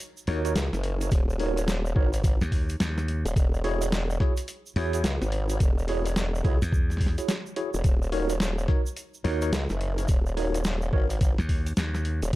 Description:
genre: glitch hop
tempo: 107 BPM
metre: 4/4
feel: swing 62% on 16ths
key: Eb phrygian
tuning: A4 = 440 Hz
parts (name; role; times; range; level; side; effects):
- tube shaker; percussion; 0.0-12.4 s; none; -43 LUFS; right 4 dB; none
- tine electric piano; stabs; 0.3-11.1 s; Eb4 to Db5; -32 LUFS; right 1 dB; medium stereo tremolo, sidechain pumping, digital delay
- slap bass; bass; 0.3-12.2 s; Eb2 to E2; -27 LUFS; equal; none
- boom bap sampler-style drum kit; drums; 0.3-12.4 s; hi-hat, snare drum; -32 LUFS; equal; studio reverb
- formant-sweep wobble bass; bass; 0.6-12.4 s; Eb1 to Db2; -28 LUFS; equal; chorus, tube saturation
- electronic kick drum; drums; 1.1-12.4 s; none; -23 LUFS; equal; studio reverb
room: digital ambience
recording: dark, warm production, faint mains hum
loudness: -24 LUFS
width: side -17 dB against mid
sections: 0.0-12.4 A section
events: none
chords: 0.0 Ebm7; 3.4 E69; 7.8 Ebm7

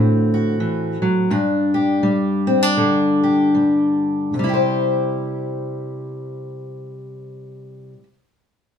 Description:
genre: folk, solo fingerstyle acoustic guitar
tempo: 73-88 BPM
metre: 4/4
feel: swing 60% on 8ths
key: C major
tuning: A4 = 440 Hz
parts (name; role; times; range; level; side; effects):
- fingerpicked steel-string acoustic guitar; solo; 0.0-8.1 s; G2 to C5; -17 LUFS; left 1 dB; none
room: wet studio reverb, RT60 0.6 s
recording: band playing live in one room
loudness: -16 LUFS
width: side -8 dB against mid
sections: 0.0-4.3 A section; 4.3-7.6 B section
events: slowing down 0.0-4.3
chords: 0.0 D7; 1.3 G5; 4.3 C

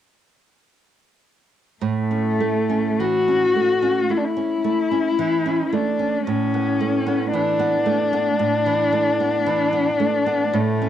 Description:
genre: romantic duo for cello and classical guitar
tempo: 50-57 BPM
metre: 4/4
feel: rubato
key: A major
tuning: A4 = 439 Hz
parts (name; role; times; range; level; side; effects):
- warm cello; melody; 1.8-10.9 s; A3 to F#4; -20 LUFS; left 4 dB; cassette tape
- nylon-string guitar; accompaniment; 1.8-10.9 s; A2 to C#4; -23 LUFS; right 7 dB; cassette tape
room: light reverb, small room ambience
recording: home recording on cassette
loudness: -18 LUFS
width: side -10 dB against mid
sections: 1.8-10.9 A section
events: none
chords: 1.8 A; 6.3 E5/A

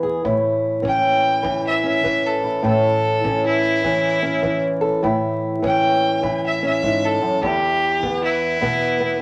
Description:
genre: acoustic country blues, solo or duo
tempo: 100 BPM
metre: 4/4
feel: swing 65% on 8ths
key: unclear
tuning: A4 = 440 Hz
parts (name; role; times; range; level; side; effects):
- fingerpicked old ladder-braced acoustic guitar; accompaniment; 0.0-9.2 s; E2 to A4; -22 LUFS; equal; none
- kick drum; drums; 0.2-8.8 s; none; -40 LUFS; equal; none
- rich fiddle; melody; 0.9-9.2 s; E4 to G5; -22 LUFS; equal; none
room: wet studio ambience, RT60 0.5 s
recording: vinyl crackle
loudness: -19 LUFS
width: mono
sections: 0.0-9.2 A section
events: fiddle solo 0.0-9.2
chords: 0.2 A; 7.4 E5

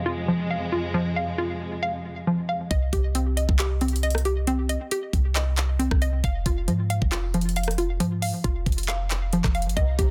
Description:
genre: hip hop, trap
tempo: 136 BPM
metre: 4/4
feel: half-time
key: unclear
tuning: A4 = 440 Hz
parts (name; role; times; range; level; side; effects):
- warm symphonic string section; sustained chords; 0.0-2.7, 9.8-10.1 s; F2 to Eb4; -33 LUFS; equal; low-pass filter
- hollow square pluck; arpeggios; 0.0-10.1 s; F3 to F5; -29 LUFS; equal; chorus, low-pass filter, delay
- clean 808-style bass; bass; 2.7-10.1 s; F1 to Ab2; -27 LUFS; equal; none
- trap drum kit; drums; 2.7-10.1 s; handclaps, hi-hat, kick drum, rim click; -29 LUFS; equal; none
room: little or no reverb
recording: dense, heavily limited modern master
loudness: -25 LUFS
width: mono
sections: 0.0-2.7 A section; 2.7-10.1 B section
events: none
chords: 0.0 Fm; 2.7 Cm; 6.2 Fm

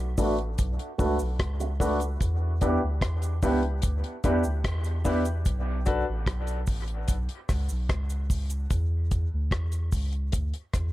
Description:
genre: dub reggae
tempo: 74 BPM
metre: 4/4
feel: straight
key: B minor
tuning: A4 = 440 Hz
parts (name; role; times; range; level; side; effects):
- soft dub sub bass; bass; 0.0-10.9 s; A1 to E2; -28 LUFS; equal; none
- electric guitar with an envelope filter; accompaniment; 0.2-5.2 s; A3 to G4; -32 LUFS; right 4 dB; tremolo, high-pass filter, low-pass filter, dub echo
- bright concert grand piano; stabs; 0.2-6.0 s; D4 to B4; -32 LUFS; left 5 dB; high-pass filter, low-pass filter, dub echo
- deep reggae drum kit; drums; 0.2-10.9 s; hi-hat, kick drum, rim click; -29 LUFS; equal; none
- cabasa; percussion; 0.2-10.9 s; none; -43 LUFS; right 4 dB; high-pass filter on perc
room: light reverb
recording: none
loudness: -25 LUFS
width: side -16 dB against mid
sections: 0.0-10.9 A section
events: filter sweep 0.0-10.9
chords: 0.0 Bm7; 2.2 Em7; 5.5 B7(no3); 8.7 C#m

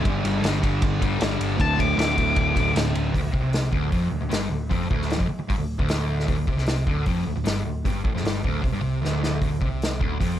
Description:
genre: garage rock duo or trio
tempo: 153 BPM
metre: 4/4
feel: straight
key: D minor from 3.1 s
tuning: A4 = 440 Hz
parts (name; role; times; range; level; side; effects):
- fuzz guitar; riff; 0.0-10.4 s; D2 to G3; -25 LUFS; equal; distortion
- hollow-body short-scale picked electric bass; bass; 0.0-10.4 s; D1 to C2; -28 LUFS; equal; overdrive
- vintage drum kit; drums; 0.1-10.3 s; hi-hat, kick drum, ride cymbal, snare drum; -26 LUFS; equal; none
- octave-fuzz lead guitar; melody; 1.6-2.7 s; A5 to D6; -23 LUFS; left 4 dB; distortion, analog delay
room: light reverb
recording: none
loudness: -21 LUFS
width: side -11 dB against mid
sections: 0.0-3.1 A section; 3.1-10.4 B section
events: drum fill 9.0-9.4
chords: 0.1 G5; 1.6 D5; 3.1 Dm

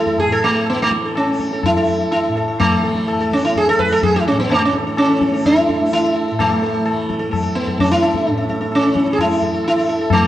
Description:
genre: indian classical, Hindustani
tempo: 127 BPM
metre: 4/4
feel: straight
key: A raga hamsadhwani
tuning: A4 = 440 Hz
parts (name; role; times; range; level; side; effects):
- sitar; melody; 0.0-10.3 s; A3 to B4; -16 LUFS; equal; none
- tanpura; drone; 0.0-10.3 s; A2 to A3; -25 LUFS; right 1 dB; none
- tabla; percussion; 0.1-10.3 s; none; -22 LUFS; left 3 dB; none
room: wet recital hall reverb, RT60 1.8 s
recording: dark, warm production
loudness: -14 LUFS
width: side -13 dB against mid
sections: 0.0-10.3 A section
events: speeding up 0.0-10.3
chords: none

